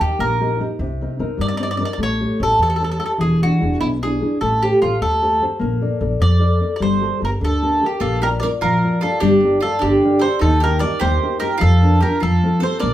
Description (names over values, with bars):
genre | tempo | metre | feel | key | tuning
italian folk, Italian serenade | 100 BPM (dotted quarters) | 6/8 | straight | G minor, Bb major from 8.0 s | A4 = 440 Hz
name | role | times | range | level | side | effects
mandolin | melody | 0.0-12.9 s | E4 to D5 | -19 LUFS | right 1 dB | none
nylon-string guitar | accompaniment | 0.0-12.9 s | B2 to D5 | -20 LUFS | left 2 dB | none
upright bass | bass | 0.0-12.9 s | E1 to G2 | -20 LUFS | equal | none
bowl-back mandolin | second line | 8.0-12.9 s | D4 to Bb4 | -24 LUFS | right 3 dB | none
room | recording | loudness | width
wet studio reverb, RT60 0.5 s | heard from further back in the room | -15 LUFS | side -12 dB against mid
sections
0.0-8.0 A section; 8.0-12.9 B section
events
none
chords
0.0 Eb; 0.8 Cm7; 2.0 A7; 3.2 E7; 4.4 Am7b5; 5.6 Bbmaj7; 6.8 Gmadd9; 8.0 Bb; 9.2 Gm; 10.4 Eb; 11.6 Bb/F; 12.2 F